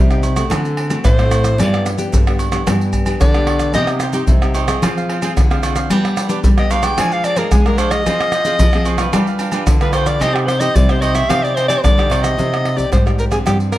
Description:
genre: samba and choro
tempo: 111 BPM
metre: 4/4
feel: straight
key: C minor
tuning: A4 = 440 Hz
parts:
  - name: nylon-string guitar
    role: accompaniment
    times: 0.0-13.8 s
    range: G2 to D5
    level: -23 LUFS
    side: left 2 dB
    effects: none
  - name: nylon-string guitar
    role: bass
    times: 0.0-13.8 s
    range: G2 to Ab3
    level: -20 LUFS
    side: right 1 dB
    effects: none
  - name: maracas, pandeiro, tamborim, agogo bells and surdo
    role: percussion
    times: 0.1-13.8 s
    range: none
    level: -16 LUFS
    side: equal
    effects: none
  - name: breathy soprano saxophone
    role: melody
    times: 1.0-13.8 s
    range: G4 to Ab5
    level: -19 LUFS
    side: left 1 dB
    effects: none
  - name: cavaquinho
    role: accompaniment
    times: 3.8-12.4 s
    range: D4 to F5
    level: -26 LUFS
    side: right 6 dB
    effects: none
room: light reverb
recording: close, detailed microphones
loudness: -13 LUFS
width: side -14 dB against mid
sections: 0.0-12.4 A section; 12.4-13.8 B section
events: soprano saxophone solo 0.0-12.4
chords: 0.0 Cmadd9; 0.5 D7; 1.6 G; 3.7 Cm; 4.8 Fm; 5.9 G; 7.0 Ddim/F; 8.1 Fm; 9.1 G7; 10.2 Cm; 12.4 Cmadd9

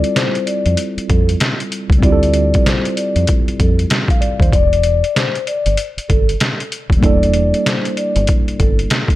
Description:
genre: hip hop, boom-bap hip-hop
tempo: 96 BPM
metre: 4/4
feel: swing 62% on 16ths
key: D minor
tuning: A4 = 441 Hz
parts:
  - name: vibraphone with soft mallets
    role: melody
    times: 0.0-8.8 s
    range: A4 to D5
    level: -20 LUFS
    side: moving between left 10 dB and right 4 dB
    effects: auto-pan, high-pass filter, low-pass filter, tape echo
  - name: mellow tine electric piano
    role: accompaniment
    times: 0.0-9.2 s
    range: G3 to F5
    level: -20 LUFS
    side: right 2 dB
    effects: medium stereo tremolo, cassette tape, high-pass filter, low-pass filter
  - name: trip hop sampler-style drum kit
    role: drums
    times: 0.0-9.2 s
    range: hi-hat, kick drum, snare drum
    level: -16 LUFS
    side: equal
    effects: none
  - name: deep dub fingered electric bass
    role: bass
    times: 0.7-8.8 s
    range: Eb1 to F2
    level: -16 LUFS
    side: equal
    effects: none
room: little or no reverb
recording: none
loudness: -13 LUFS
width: side -16 dB against mid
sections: 0.0-9.2 A section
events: none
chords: 0.0 Dm11; 4.5 Em7b5

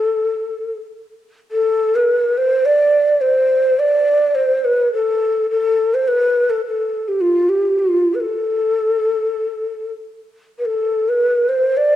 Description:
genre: turkish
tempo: 105 BPM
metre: 4/4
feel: straight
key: unclear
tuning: A4 = 441 Hz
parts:
  - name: breathy mellow ney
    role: solo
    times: 0.0-12.0 s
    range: F4 to D5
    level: -15 LUFS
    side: equal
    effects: none
room: wet recital hall reverb, RT60 1.4 s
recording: none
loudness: -15 LUFS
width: side -12 dB against mid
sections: 0.0-12.0 A section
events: none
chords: none

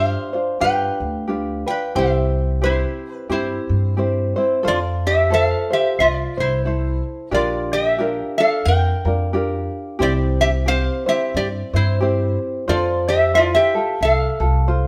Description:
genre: Hawaiian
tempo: 90 BPM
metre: 4/4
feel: swing 59% on 8ths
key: C major, F major from 4.6 s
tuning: A4 = 439 Hz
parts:
  - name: metal-body resonator slide guitar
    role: melody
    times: 0.0-14.9 s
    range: E4 to G5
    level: -22 LUFS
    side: equal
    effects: none
  - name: tenor ukulele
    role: accompaniment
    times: 0.0-14.9 s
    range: C4 to C5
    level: -25 LUFS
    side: equal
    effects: none
  - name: upright bass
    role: bass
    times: 0.0-14.9 s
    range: Bb1 to G2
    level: -24 LUFS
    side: equal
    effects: none
room: wet stone room reverb, RT60 1.0 s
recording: band playing live in one room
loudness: -19 LUFS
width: mono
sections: 0.0-4.6 A section; 4.6-14.9 B section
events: none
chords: 0.0 G7sus4; 0.6 G7; 2.0 C; 4.6 Fmaj7; 7.3 Bb6; 10.0 C; 12.7 Fmaj7

